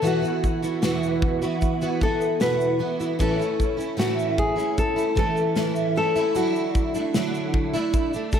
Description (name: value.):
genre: acoustic pop.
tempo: 76 BPM.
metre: 4/4.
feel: straight.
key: A major.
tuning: A4 = 440 Hz.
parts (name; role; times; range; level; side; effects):
nylon-string guitar; melody; 0.0-8.4 s; F#4 to B4; -25 LUFS; left 3 dB; none.
picked plugged-in steel-string acoustic guitar; accompaniment; 0.0-8.4 s; E2 to F#4; -24 LUFS; right 2 dB; ensemble chorus.
modern studio drum kit; drums; 0.0-8.4 s; kick drum, shaker, snare drum; -26 LUFS; equal; none.
room: moderate plate reverb, RT60 2.5 s.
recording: dreamy mix soaked in reverb.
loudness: -21 LUFS.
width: side -8 dB against mid.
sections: 0.0-8.4 A section.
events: none.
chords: 0.0 Esus2; 3.2 A; 6.4 Dadd9.